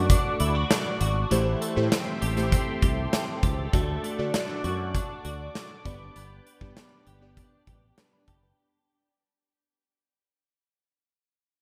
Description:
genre	1980s-style pop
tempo	99 BPM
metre	4/4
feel	straight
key	D mixolydian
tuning	A4 = 439 Hz
part	glassy digital keys	accompaniment	0.0-8.7 s	A3 to B5	-34 LUFS	equal	chorus, shimmer reverb
part	phased analog pad	sustained chords	0.0-8.6 s	A4 to D6	-37 LUFS	equal	phaser, chorus, shimmer reverb
part	twelve-string electric guitar	riff	0.0-9.1 s	E3 to G4	-36 LUFS	equal	ensemble chorus, shimmer reverb, delay
part	sustaining fretless electric bass	bass	0.0-8.5 s	F#1 to D3	-31 LUFS	equal	none
part	big rock drum kit	drums	0.1-8.4 s	hi-hat, kick drum, snare drum	-29 LUFS	equal	none
part	mellow synth brass	stabs	7.7-8.2 s	G3 to B4	-66 LUFS	equal	none
room	moderate lush hall reverb, RT60 2.6 s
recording	bright 1980s-style digital production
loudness	-26 LUFS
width	mono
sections	0.0-8.6 A section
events	fade-out 0.0-8.6; band accent 6.2-8.6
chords	0.0 D; 1.3 Am7; 3.7 D; 5.9 G

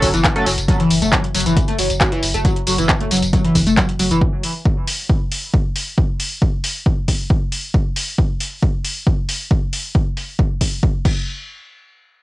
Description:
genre	driving peak-time techno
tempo	136 BPM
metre	4/4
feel	straight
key	F# minor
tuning	A4 = 440 Hz
part	overdriven synth lead	riff	0.0-4.2 s	E3 to A3	-19 LUFS	left 1 dB	distortion, phaser, lush chorus, sidechain pumping, cassette tape, analog delay
part	sync-sweep polysynth	stabs	0.0-0.5 s	F#3 to A4	-23 LUFS	right 1 dB	chorus, sidechain pumping, cassette tape, analog delay
part	saturated sub bass	bass	0.0-4.2 s	F#1	-23 LUFS	equal	tube saturation, sidechain pumping, low-pass filter
part	electronic kick drum	drums	0.0-11.1 s	none	-17 LUFS	equal	cassette tape
part	techno drum kit	drums	0.0-11.1 s	crash cymbal, handclaps, hi-hat, tambourine	-21 LUFS	equal	sidechain pumping on hats, cassette tape, sidechain pumping on cymbals, sidechain pumping on perc
part	downlifter	sound effects	0.0-0.7 s	none	barely audible	none	none
room	moderate booth ambience, RT60 0.2 s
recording	home recording on cassette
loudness	-15 LUFS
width	side -18 dB against mid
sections	0.0-11.3 A section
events	none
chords	none

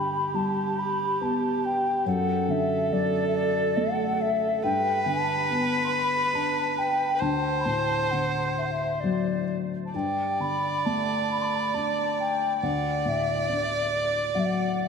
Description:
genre	celtic folk, Celtic slow air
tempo	69 BPM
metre	3/4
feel	rubato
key	G major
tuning	A4 = 440 Hz
part	mellow hollow wooden flute	melody	0.0-14.9 s	D5 to C6	-27 LUFS	left 1 dB	analog delay
part	rich viola	second line	0.0-14.9 s	G4 to D5	-28 LUFS	right 3 dB	analog delay
part	felt-muted upright piano	accompaniment	0.0-14.9 s	D2 to D4	-29 LUFS	left 3 dB	analog chorus
room	wet plate reverb, RT60 2.9 s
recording	dreamy mix soaked in reverb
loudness	-23 LUFS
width	side -6 dB against mid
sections	0.0-14.9 A section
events	none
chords	0.0 G; 2.1 D/F#; 4.6 G; 7.2 D; 9.9 Gsus2; 12.6 D

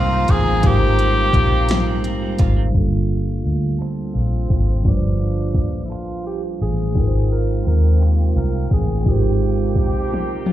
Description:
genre	slow six-eight R&B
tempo	57 BPM (dotted quarters)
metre	6/8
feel	straight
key	G phrygian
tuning	A4 = 438 Hz
part	clear tenor saxophone	melody	0.0-10.5 s	C4 to Bb4	-24 LUFS	right 1 dB	slapback echo, plate reverb
part	clean electric guitar	second line	0.0-10.5 s	Ab2 to A4	-28 LUFS	right 9 dB	spring reverb, plate reverb
part	mellow tine electric piano	accompaniment	0.0-10.5 s	F3 to G5	-26 LUFS	left 2 dB	plate reverb, slapback echo
part	warm studio string section	sustained chords	0.0-2.7, 7.0-10.5 s	C3 to Bb5	-32 LUFS	equal	plate reverb
part	vintage muted fingered electric bass	bass	0.0-10.5 s	G1 to Eb2	-18 LUFS	equal	none
part	smooth R&B drum kit	drums	0.3-10.5 s	finger snaps, hi-hat, kick drum, snare drum, toms	-19 LUFS	equal	none
room	little or no reverb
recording	live gig heard through the venue's PA, club reverb, low-pass filter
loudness	-16 LUFS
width	side -13 dB against mid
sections	0.0-2.7 A section; 2.7-10.5 B section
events	filter sweep 2.7-10.5; drum fill 10.1-10.5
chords	0.0 Abmaj13; 2.7 Gm9; 7.0 Abmaj13

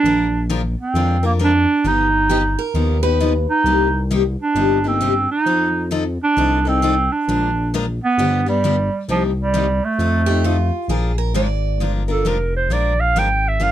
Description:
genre	acoustic string swing (jazz manouche)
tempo	133 BPM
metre	4/4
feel	swing 63% on 8ths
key	Bb mixolydian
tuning	A4 = 440 Hz
part	breathy clarinet	melody	0.0-13.7 s	F3 to G5	-18 LUFS	right 3 dB	none
part	smooth synth bass	bass	0.0-13.7 s	F1 to F2	-20 LUFS	left 1 dB	none
part	picked steel-string acoustic guitar	accompaniment	0.1-13.7 s	C3 to Bb4	-22 LUFS	left 6 dB	none
part	picked steel-string acoustic guitar	second line	2.3-3.3, 10.3-11.9 s	F4 to D5	-24 LUFS	right 3 dB	none
room	little or no reverb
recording	close, detailed microphones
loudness	-16 LUFS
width	side -12 dB against mid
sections	0.0-10.9 A section; 10.9-13.7 B section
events	clarinet solo 10.9-13.7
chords	0.0 Bb7; 1.8 G7alt; 3.7 Cm7; 5.5 F7; 7.3 Bb7; 8.2 G7; 9.1 Cm7; 10.0 F7; 10.9 Bb7

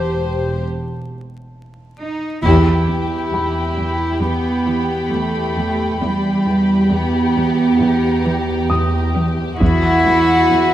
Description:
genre	cinematic, suspense film score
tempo	67 BPM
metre	4/4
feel	straight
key	E harmonic minor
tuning	A4 = 440 Hz
part	warm studio violin section	melody	0.0-10.7 s	F#4 to C5	-22 LUFS	left 4 dB	none
part	rich studio viola section	accompaniment	0.0-0.7 s	G4	-26 LUFS	equal	none
part	dark studio double bass section	bass	0.0-10.7 s	E1 to E2	-23 LUFS	right 1 dB	none
part	warm studio cello section	bass	0.0-10.7 s	E2 to E4	-18 LUFS	right 2 dB	none
part	dark concert grand piano	texture	0.0-10.7 s	A5 to D#6	-29 LUFS	left 1 dB	none
part	warm studio cello section	riff	2.4-10.7 s	E2 to E3	-21 LUFS	equal	none
part	taiko ensemble	drums	2.4-4.2, 9.6-10.7 s	none	-24 LUFS	equal	none
part	dark studio violin section	texture	2.5-9.1 s	G5 to B5	-28 LUFS	left 2 dB	none
room	moderate scoring stage reverb, RT60 1.8 s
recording	vinyl crackle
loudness	-14 LUFS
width	side -12 dB against mid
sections	0.0-2.4 A section; 2.4-10.7 B section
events	break 0.7-2.4; band accent 2.4-3.3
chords	0.0 C/E; 2.4 Em; 9.6 Bsus4/E (rootless)

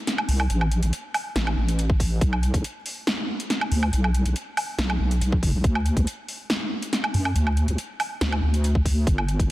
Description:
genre	deep dubstep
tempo	140 BPM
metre	4/4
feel	half-time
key	unclear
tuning	A4 = 440 Hz
part	deep house drum kit	drums	0.1-9.5 s	hi-hat, snare drum, woodblock	-27 LUFS	equal	overdrive
part	deep soft wobble bass	bass	0.3-9.5 s	F#1 to F#2	-22 LUFS	equal	chorus
part	electronic kick drum	drums	1.9-2.6, 5.3-6.0, 8.8-9.5 s	none	-22 LUFS	equal	none
room	little or no reverb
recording	dense, heavily limited modern master, vinyl crackle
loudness	-21 LUFS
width	side -17 dB against mid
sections	0.0-9.5 A section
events	none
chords	none

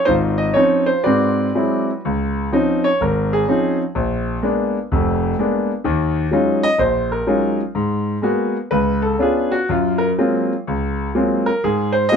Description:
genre	solo jazz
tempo	125 BPM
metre	4/4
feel	swing 66% on 8ths, rubato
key	Db major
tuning	A4 = 439 Hz
part	clear concert grand piano	solo	0.0-12.2 s	F1 to Eb5	-16 LUFS	equal	none
room	moderate small room reverb, RT60 0.5 s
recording	minimal, uncompressed stereo recording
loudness	-16 LUFS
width	side -6 dB against mid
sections	0.0-2.0 A section; 2.0-12.2 B section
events	grand piano solo 2.0-12.2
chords	0.0 Dbmaj9; 1.0 Ab7alt; 2.0 Dbmaj9; 4.0 Bb7b9; 5.8 Ebm11; 7.7 Abm9; 8.7 Db7b9; 9.7 Gbmaj9#11; 11.6 Ab

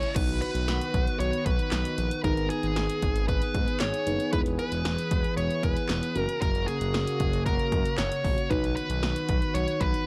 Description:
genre	synth-pop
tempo	115 BPM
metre	4/4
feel	straight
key	B major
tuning	A4 = 441 Hz
part	dark smooth lead guitar	melody	0.0-10.1 s	G#4 to C#5	-33 LUFS	equal	overdrive
part	chorused pulse-width pad	sustained chords	0.0-10.1 s	C#3 to G#4	-36 LUFS	equal	none
part	punchy analog drum machine	drums	0.0-10.1 s	crash cymbal, handclaps, hi-hat, kick drum, snare drum	-32 LUFS	equal	none
part	muted felt-like synth keys	accompaniment	0.2-10.1 s	C#4 to B4	-37 LUFS	equal	chorus
part	smooth gliding synth bass	bass	0.2-9.9 s	E1 to G#2	-33 LUFS	equal	none
room	light reverb, digital ambience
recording	none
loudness	-27 LUFS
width	mono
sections	0.2-10.1 A section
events	none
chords	0.2 B; 2.2 G#m; 4.3 E; 6.2 F#; 8.5 B

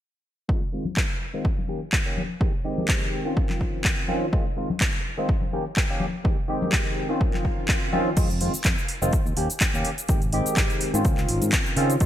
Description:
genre	filtered disco house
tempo	125 BPM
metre	4/4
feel	swing 55% on 16ths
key	F minor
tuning	A4 = 440 Hz
part	barky tine electric piano	accompaniment	0.5-12.1 s	Eb3 to G4	-28 LUFS	equal	phaser, sidechain pumping, low-pass filter
part	electronic kick drum	drums	0.5-12.1 s	none	-24 LUFS	equal	overdrive
part	maracas and congas	percussion	0.5-8.1 s	none	-32 LUFS	left 4 dB	sidechain pumping on perc, low-pass filter on perc
part	house drum kit	drums	1.0-12.1 s	crash cymbal, handclaps, hi-hat, shaker	-28 LUFS	equal	overdrive, sidechain pumping on hats, sidechain pumping on cymbals, sidechain pumping on perc, gated reverb
part	swell	sound effects	7.4-8.2 s	none	-37 LUFS	right 1 dB	none
part	fingered electric bass	bass	8.2-12.1 s	F1 to Db3	-26 LUFS	equal	sidechain pumping, low-pass filter
room	light reverb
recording	bright 1980s-style digital production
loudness	-22 LUFS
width	side -11 dB against mid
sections	0.5-8.2 A section; 8.2-12.1 B section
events	filter sweep 0.5-8.2; swell 7.4-8.2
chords	0.5 Fm7; 1.4 Eb7; 2.4 Abmaj7; 3.4 Dbmaj9; 4.3 Fm7; 5.3 Eb7; 6.2 Abmaj7; 7.2 Dbmaj9; 8.2 Fm7; 9.1 Eb7; 10.1 Abmaj7; 11.0 Dbmaj9

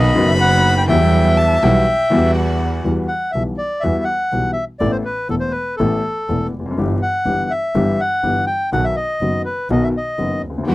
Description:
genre	tango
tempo	122 BPM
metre	4/4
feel	rubato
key	E minor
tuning	A4 = 439 Hz
part	bandoneon	melody	0.0-10.4 s	A4 to G5	-19 LUFS	left 1 dB	none
part	warm violin	second line	0.0-2.8, 10.7 s	F#5 to B5	-23 LUFS	left 1 dB	none
part	clear upright piano	accompaniment	0.0-10.7 s	E1 to A4	-20 LUFS	left 2 dB	none
part	bright chamber string section	stabs	0.0-2.8, 10.7 s	F#3 to F#4	-25 LUFS	right 4 dB	none
part	clear double bass	bass	0.0-10.7 s	E1 to E2	-20 LUFS	right 2 dB	none
room	light reverb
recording	dry, close 1970s-style studio recording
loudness	-15 LUFS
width	side -18 dB against mid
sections	0.0-2.8 A section; 2.8-10.7 B section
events	none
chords	0.0 B; 0.9 Emadd9; 4.8 Asus2; 6.8 Em/G; 8.7 B

